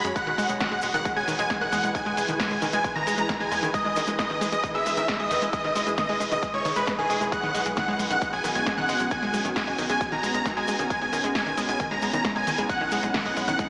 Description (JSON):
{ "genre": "uplifting trance", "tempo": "134 BPM", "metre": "4/4", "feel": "straight", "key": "unclear", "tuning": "A4 = 440 Hz", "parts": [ { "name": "supersaw chords", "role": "melody", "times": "0.0-13.6 s", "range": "G#4 to A#5", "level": "-30 LUFS", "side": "equal", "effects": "ensemble chorus, sidechain pumping, analog delay" }, { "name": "plucky unison lead", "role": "second line", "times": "0.0-13.6 s", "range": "G#5 to A#6", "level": "-33 LUFS", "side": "equal", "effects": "sidechain pumping, analog delay" }, { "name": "shimmering ambient pad", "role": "sustained chords", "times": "0.0-13.7 s", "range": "E3 to C#5", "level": "-35 LUFS", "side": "equal", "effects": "chorus, built-in reverb, sidechain pumping" }, { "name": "unison pluck", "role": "arpeggios", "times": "0.0-13.7 s", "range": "D#3 to G#3", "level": "-33 LUFS", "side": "equal", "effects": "sidechain pumping, analog delay" }, { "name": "tight sequencer bass", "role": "bass", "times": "0.0-13.6 s", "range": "E1 to F#2", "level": "-40 LUFS", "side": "equal", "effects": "sidechain pumping" }, { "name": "punchy analog drum machine", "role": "drums", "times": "0.0-13.7 s", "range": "hi-hat, snare drum", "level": "-35 LUFS", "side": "equal", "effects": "sidechain pumping on hats" }, { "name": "cabasa", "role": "percussion", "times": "0.0-13.7 s", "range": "none", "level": "-48 LUFS", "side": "equal", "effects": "none" }, { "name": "electronic kick drum", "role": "drums", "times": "0.2-13.7 s", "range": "none", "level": "-37 LUFS", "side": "equal", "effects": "none" } ], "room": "wet huge ambient reverb, RT60 8.8 s", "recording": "dreamy mix soaked in reverb, small speaker sound", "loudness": "-26 LUFS", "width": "mono", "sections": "0.0-13.7 A section", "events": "none", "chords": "0.2 E; 7.3 Bsus2" }